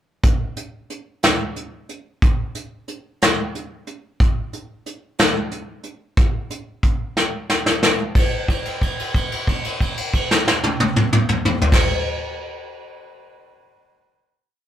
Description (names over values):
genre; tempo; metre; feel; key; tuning
rock; 61 BPM (dotted quarters); 6/8; straight; none; none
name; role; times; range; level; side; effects
soft brush drum kit; drums; 0.2-11.9 s; crash cymbal, hi-hat, kick drum, snare drum, toms; -18 LUFS; equal; none
room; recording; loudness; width
moderate small room reverb, RT60 0.6 s; rough rehearsal-room recording; -18 LUFS; side -11 dB against mid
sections
0.2-8.2 verse; 8.2-12.1 final hit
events
drum fill 7.2-8.2; held note 8.2-11.7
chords
none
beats
| 0.23 1.23 | 2.22 3.21 | 4.20 5.19 | 6.18 7.17 | 8.16 9.15 | 10.14 11.13